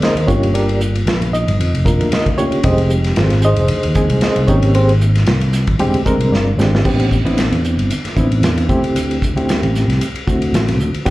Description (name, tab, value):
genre	electric jazz fusion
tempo	114 BPM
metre	4/4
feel	swing 55% on 16ths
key	unclear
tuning	A4 = 440 Hz
part	reed electric piano	accompaniment	0.0-11.1 s	Ab3 to Eb5	-18 LUFS	right 1 dB	fast tremolo, plate reverb, slapback echo
part	modern studio drum kit	drums	0.0-11.1 s	crash cymbal, hi-hat, kick drum, ride cymbal, snare drum	-19 LUFS	equal	none
part	sustaining fretless electric bass	bass	0.2-11.1 s	E1 to F2	-16 LUFS	equal	none
room	light reverb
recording	live gig heard through the venue's PA, club reverb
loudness	-13 LUFS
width	side -18 dB against mid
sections	0.0-6.8 A section; 6.8-11.1 B section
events	reed electric piano fill 6.1-6.8; drum fill 6.3-6.8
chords	0.3 Gm7; 2.6 Fm7; 4.5 Abmaj9; 5.8 E7alt; 6.8 Am11; 8.7 D9sus4